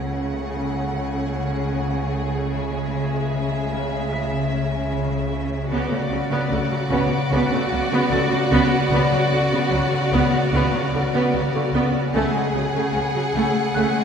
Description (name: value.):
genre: cinematic, suspense film score.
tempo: 75 BPM.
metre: 4/4.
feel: straight.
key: unclear.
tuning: A4 = 440 Hz.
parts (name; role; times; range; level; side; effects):
rich symphonic violin section; melody; 0.0-14.0 s; D5 to F#5; -29 LUFS; left 2 dB; none.
warm symphonic violin section; second line; 0.0-14.0 s; F#4 to G#4; -26 LUFS; equal; none.
clear symphonic viola section; accompaniment; 0.0-14.0 s; D3 to B3; -25 LUFS; right 1 dB; none.
concert harp; riff; 0.0-14.0 s; C#3 to C#4; -27 LUFS; left 3 dB; none.
rich symphonic cello section; bass; 0.0-14.0 s; C#3; -27 LUFS; right 1 dB; none.
rich symphonic double bass section; bass; 0.0-13.8 s; C#2; -29 LUFS; right 2 dB; none.
bright grand piano; texture; 4.1-14.0 s; F#6 to B6; -34 LUFS; equal; none.
rich symphonic violin section; texture; 5.7-11.7 s; D6 to F#6; -35 LUFS; left 1 dB; none.
room: wet scoring stage reverb, RT60 1.9 s.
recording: heard from further back in the room.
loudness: -19 LUFS.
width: side -7 dB against mid.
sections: 0.0-14.0 A section.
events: none.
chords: 0.0 F#madd9/C#; 2.5 C#m; 5.7 D6/C#; 12.1 F#madd9/C#.